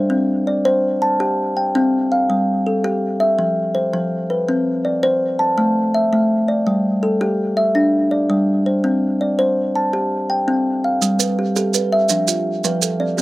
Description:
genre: southern african traditional, mbira-style interlocking cycle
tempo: 110 BPM (dotted quarters)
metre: 12/8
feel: straight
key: unclear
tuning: A4 = 440 Hz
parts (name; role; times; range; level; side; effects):
- kalimba; arpeggios; 0.0-13.2 s; F3 to A5; -16 LUFS; equal; none
- maracas; percussion; 11.0-13.2 s; none; -20 LUFS; right 8 dB; none
- kalimba; arpeggios; 11.2-13.2 s; F3 to B4; -24 LUFS; right 6 dB; slapback echo
room: little or no reverb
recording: recorded outdoors, with no room sound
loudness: -16 LUFS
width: side -18 dB against mid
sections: 0.0-11.0 A section; 11.0-13.2 A section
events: none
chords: 0.1 C5; 2.3 Fmaj9/G; 3.4 F5; 4.5 Csus2; 5.6 A5; 6.7 G5; 8.8 C5; 11.0 G; 12.1 F

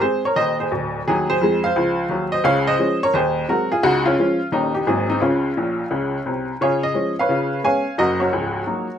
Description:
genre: jazz, stride piano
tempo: 173 BPM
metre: 4/4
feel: swing 64% on 8ths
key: Db major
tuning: A4 = 438 Hz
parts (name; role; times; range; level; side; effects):
- bright upright piano; solo; 0.0-9.0 s; Db1 to Ab5; -18 LUFS; equal; none
room: moderate studio ambience, RT60 0.5 s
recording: none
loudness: -17 LUFS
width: side -9 dB against mid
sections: 0.0-6.6 A section; 6.6-9.0 B section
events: upright piano fill 5.6-6.6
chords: 0.0 Ab; 1.1 Ab7/Eb; 2.4 Db; 3.1 Ab7/Eb; 3.8 Db; 4.5 Eb7; 4.9 Ab9; 5.2 Db; 6.6 Db7; 8.0 Gb6

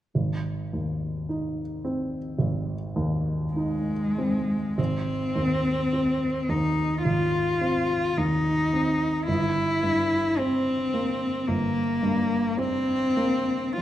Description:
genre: classical, romantic duo for cello and grand piano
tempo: 53 BPM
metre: 4/4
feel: uneven beats, rubato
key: Ab major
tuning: A4 = 440 Hz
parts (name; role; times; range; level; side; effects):
- warm baby grand piano; accompaniment; 0.1-13.8 s; G1 to Eb4; -27 LUFS; right 1 dB; none
- clear cello; melody; 3.5-13.8 s; Ab3 to F4; -24 LUFS; left 1 dB; none
room: moderate scoring stage reverb, RT60 1.5 s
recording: dark, warm production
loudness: -23 LUFS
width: side -12 dB against mid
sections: 0.1-4.8 A section; 4.8-13.8 B section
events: none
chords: 0.1 Ab; 9.3 C7/G

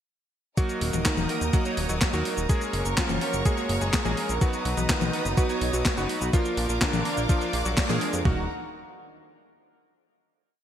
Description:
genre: italo disco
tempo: 125 BPM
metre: 4/4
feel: straight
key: Eb minor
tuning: A4 = 441 Hz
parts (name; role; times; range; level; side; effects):
- bright electric grand piano; melody; 0.6-8.4 s; D3 to Ab4; -32 LUFS; left 1 dB; ping-pong delay
- warm studio string section; sustained chords; 0.6-8.5 s; Eb3 to Eb6; -33 LUFS; equal; none
- chorused polysynth; stabs; 0.6-8.4 s; Bb3 to D5; -31 LUFS; right 3 dB; none
- clean 12-bit digital drum machine; drums; 0.6-8.4 s; kick drum, toms; -25 LUFS; equal; overdrive
- clean 12-bit digital drum machine; drums; 0.6-8.2 s; cabasa, handclaps, hi-hat, snare drum, toms; -29 LUFS; left 2 dB; overdrive, gated reverb
- fat analog bass; bass; 0.8-8.5 s; Eb1 to Bb2; -30 LUFS; equal; none
room: moderate lush hall reverb, RT60 2.1 s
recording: bright 1980s-style digital production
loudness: -23 LUFS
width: side -10 dB against mid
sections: 0.6-8.3 chorus; 8.3-10.2 final chord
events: band accent 7.8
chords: 0.6 Ebm; 2.5 Gb; 4.4 B; 6.3 Bb; 8.3 Ebm

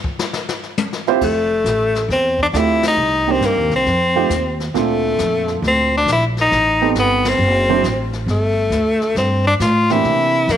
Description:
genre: jazz, small-group swing and bop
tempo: 136 BPM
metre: 4/4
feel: swing 66% on 8ths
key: F major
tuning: A4 = 440 Hz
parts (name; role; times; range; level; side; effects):
- jazz brush drum kit; drums; 0.0-10.6 s; brushed snare drum, crash cymbal, hi-hat, kick drum, ride cymbal, snare drum, toms; -27 LUFS; left 4 dB; none
- dark baby grand piano; accompaniment; 1.1-10.5 s; Bb2 to C5; -20 LUFS; right 11 dB; none
- bright tenor saxophone; melody; 1.2-10.6 s; A3 to F4; -16 LUFS; left 2 dB; none
- upright bass; bass; 1.2-10.6 s; F1 to C3; -20 LUFS; equal; none
room: moderate echo chamber reverb, RT60 1.3 s, studio reverb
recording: 1960s-style stereo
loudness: -14 LUFS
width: side -10 dB against mid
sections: 0.0-1.2 A section; 1.2-10.6 B section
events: drum solo 0.0-1.2; band accent 2.8, 7.2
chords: 0.0 F5; 1.2 Fmaj7; 3.0 Cm7; 3.9 F7; 4.7 Bbmaj7; 6.5 Am7b5; 7.4 D7; 8.3 Gsus2; 10.1 C7

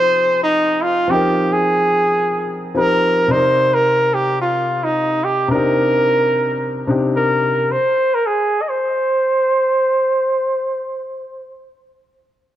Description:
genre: amapiano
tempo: 109 BPM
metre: 4/4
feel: swing 55% on 16ths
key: C minor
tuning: A4 = 441 Hz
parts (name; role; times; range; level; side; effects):
- trumpet with bucket mute; melody; 0.0-11.6 s; Eb4 to Eb5; -16 LUFS; right 1 dB; low-pass filter
- warm grand piano; accompaniment; 0.0-7.7 s; C3 to G5; -20 LUFS; left 2 dB; low-pass filter
room: light reverb, small room reverb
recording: dark, warm production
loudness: -14 LUFS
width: side -12 dB against mid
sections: 0.0-3.3 A section; 3.3-12.1 B section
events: filter sweep 3.3-12.1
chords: 0.0 Fm9; 3.3 Cm9; 7.7 N.C.

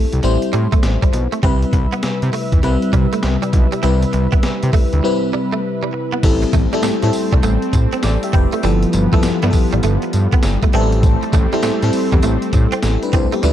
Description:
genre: R&B, new jack swing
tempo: 100 BPM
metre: 4/4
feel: swing 65% on 16ths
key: unclear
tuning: A4 = 437 Hz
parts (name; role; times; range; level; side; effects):
- FM electric piano; accompaniment; 0.0-13.5 s; F3 to G5; -20 LUFS; left 2 dB; chorus, phaser
- direct-recorded clean electric guitar; riff; 0.0-13.5 s; G3 to C4; -25 LUFS; right 6 dB; ensemble chorus
- fat analog bass; bass; 0.1-13.5 s; F1 to C3; -17 LUFS; equal; none
- breakbeat sampler-style drum kit; drums; 0.1-13.5 s; crash cymbal, hi-hat, kick drum, snare drum, tambourine; -17 LUFS; equal; none
- lush unison pad; sustained chords; 1.4-13.5 s; C3 to E5; -23 LUFS; left 1 dB; chorus
room: little or no reverb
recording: dark, warm production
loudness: -14 LUFS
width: side -11 dB against mid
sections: 0.0-6.2 A section; 6.2-13.5 B section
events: break 5.0-6.2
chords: 0.0 Am7; 1.4 Cmaj7; 6.2 Am7; 8.6 G13; 10.7 Am7

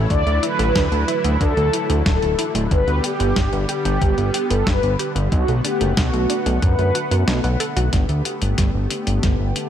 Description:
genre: synthwave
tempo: 92 BPM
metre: 4/4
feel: straight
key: unclear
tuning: A4 = 440 Hz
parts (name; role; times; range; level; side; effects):
- warm analog pad; sustained chords; 0.0-9.7 s; D3 to F#5; -26 LUFS; left 1 dB; chorus
- analog pluck; arpeggios; 0.0-9.7 s; A3 to A4; -30 LUFS; right 3 dB; chorus, cassette tape, ping-pong delay
- fat analog bass; bass; 0.0-9.5 s; D1 to F#2; -20 LUFS; equal; none
- mellow synth brass; melody; 0.1-7.6 s; F#4 to D5; -23 LUFS; equal; chorus, ping-pong delay
- clean 12-bit digital drum machine; drums; 0.1-9.7 s; hi-hat, snare drum; -25 LUFS; left 1 dB; none
- electronic kick drum; drums; 0.1-9.4 s; none; -21 LUFS; equal; none
room: light reverb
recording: none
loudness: -17 LUFS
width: side -10 dB against mid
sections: 0.0-7.9 A section; 7.9-9.7 B section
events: kick drops out 7.3-7.9; drum fill 7.9-9.7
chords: 0.1 Dadd9; 2.7 G; 5.3 Bm7; 7.9 Gadd9

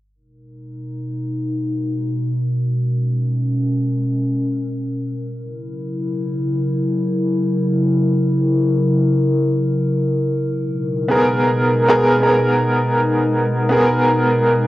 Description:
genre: trip hop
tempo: free time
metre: none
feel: none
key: G# minor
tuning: A4 = 440 Hz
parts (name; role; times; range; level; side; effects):
- warbly tape-like pad; sustained chords; 0.6-14.7 s; B2 to A#4; -18 LUFS; equal; chorus, built-in reverb
- bright upright piano; accompaniment; 11.1-14.7 s; B3 to A#4; -15 LUFS; equal; tremolo, vintage 12-bit sampler grit, tape echo
room: moderate spring reverb, RT60 2.1 s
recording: home recording on cassette, faint mains hum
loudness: -16 LUFS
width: side -16 dB against mid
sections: 0.1-14.7 A section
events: filter sweep on ambient pad 0.1-14.7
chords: 0.1 G#madd9; 5.4 F#7; 10.6 G#madd9

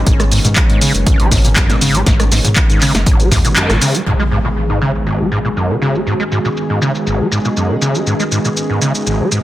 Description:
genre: acid house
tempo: 120 BPM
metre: 4/4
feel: straight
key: G# minor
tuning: A4 = 440 Hz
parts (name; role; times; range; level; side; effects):
- warm analog pad; sustained chords; 0.0-9.4 s; D#3 to G#4; -21 LUFS; equal; chorus, sidechain pumping
- round analog bass; bass; 0.0-3.8 s; F#1 to G#2; -17 LUFS; equal; tube saturation, sidechain pumping
- overdriven acid bass; riff; 0.1-9.4 s; G#1 to G#3; -16 LUFS; equal; distortion, analog chorus, cassette tape, sidechain pumping, tape echo
- electronic kick drum; drums; 0.1-3.4 s; none; -13 LUFS; equal; none
- punchy analog drum machine; drums; 0.1-9.4 s; handclaps, hi-hat, rim click, shaker, snare drum; -17 LUFS; equal; low-pass filter on hats, low-pass filter on perc, low-pass filter on snare
- impact; sound effects; 4.1-6.1 s; none; -20 LUFS; equal; none
- granular cloud pad; texture; 5.1-9.4 s; G#3 to D#5; -24 LUFS; right 2 dB; built-in reverb, sidechain pumping
room: moderate spring reverb, RT60 1.2 s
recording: dense, heavily limited modern master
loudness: -12 LUFS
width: side -14 dB against mid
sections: 0.0-4.1 A section; 4.1-9.4 B section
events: drop 0.0-4.1; kick drops out 3.6-4.1; band accent 3.6; impact 4.1-6.1; filter sweep on drum 4.1-9.4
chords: 0.0 G#m

